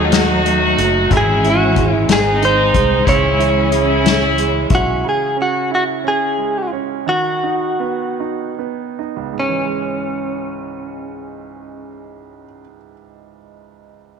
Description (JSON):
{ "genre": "six-eight pop ballad", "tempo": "47-61 BPM (dotted quarters)", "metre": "6/8", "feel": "straight", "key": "C# minor", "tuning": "A4 = 435 Hz", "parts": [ { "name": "muted French horn section", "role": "second line", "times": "0.0-5.0 s", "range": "C#4 to F#4", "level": "-20 LUFS", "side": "equal", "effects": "none" }, { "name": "bright grand piano", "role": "accompaniment", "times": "0.0-14.2 s", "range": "C#2 to A4", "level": "-23 LUFS", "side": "right 11 dB", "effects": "none" }, { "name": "warm studio string section", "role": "sustained chords", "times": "0.0-5.0 s", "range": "D#3 to D#4", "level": "-20 LUFS", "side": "left 2 dB", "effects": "none" }, { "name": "fingered electric bass", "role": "bass", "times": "0.0-5.0 s", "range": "F#1 to D#2", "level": "-20 LUFS", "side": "left 1 dB", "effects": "none" }, { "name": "soft-mallet drum kit", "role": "drums", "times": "0.1-4.9 s", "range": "hi-hat, kick drum, snare drum", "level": "-18 LUFS", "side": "left 4 dB", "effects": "none" }, { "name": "direct-recorded clean electric guitar", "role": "melody", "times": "1.2-12.7 s", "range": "C#4 to C#5", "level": "-18 LUFS", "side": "equal", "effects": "none" } ], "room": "moderate echo chamber reverb, RT60 2.2 s", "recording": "1960s-style stereo", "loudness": "-14 LUFS", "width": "side -6 dB against mid", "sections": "0.0-5.0 A section; 5.0-9.4 B section; 9.4-14.2 C section", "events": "slowing down 5.0-9.4", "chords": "0.0 D#dim; 1.1 C#m/G#; 2.1 G#; 3.1 C#m; 7.1 B/D#; 9.4 C#m", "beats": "0.13 | 1.11 2.09 | 3.07 4.05 | 5.03 6.03 | 7.07 8.18 | 9.39 10.68 | 11.97 13.25" }